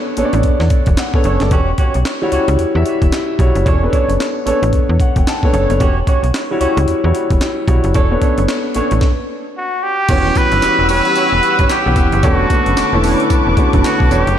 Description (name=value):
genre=R&B, new jack swing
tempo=112 BPM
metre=4/4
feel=swing 60% on 16ths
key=E dorian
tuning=A4 = 438 Hz
part: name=warm baby grand piano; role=accompaniment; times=0.0-14.4 s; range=D3 to A5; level=-18 LUFS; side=left 1 dB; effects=none
part: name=mellow horn section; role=stabs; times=0.2-14.3 s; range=C#4 to C#5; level=-22 LUFS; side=right 2 dB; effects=diffuse ambient delay
part: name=slap-like FM bass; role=bass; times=0.2-14.4 s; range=E1 to E2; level=-16 LUFS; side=equal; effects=none
part: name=breakbeat sampler-style drum kit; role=drums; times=0.2-14.4 s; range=crash cymbal, handclaps, hi-hat, kick drum, snare drum, tambourine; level=-17 LUFS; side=equal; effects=none
part: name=trumpet with straight mute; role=melody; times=9.6-14.4 s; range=F#4 to B4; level=-16 LUFS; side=right 1 dB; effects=diffuse ambient delay
part: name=muted studio string section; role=sustained chords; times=10.1-14.4 s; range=G3 to E6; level=-20 LUFS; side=left 2 dB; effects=none
room=moderate plate reverb, RT60 2.4 s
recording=dreamy mix soaked in reverb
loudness=-12 LUFS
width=side -10 dB against mid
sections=0.0-10.1 A section; 10.1-14.4 B section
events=grand piano fill 0.7-1.5, 4.7-5.8; stop 9.0-10.1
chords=0.0 Bm9; 1.5 Em69; 3.7 Bm9/E; 5.8 Em69; 7.9 Bm9/E; 9.0 N.C.; 10.1 Em69; 12.2 Bm9/E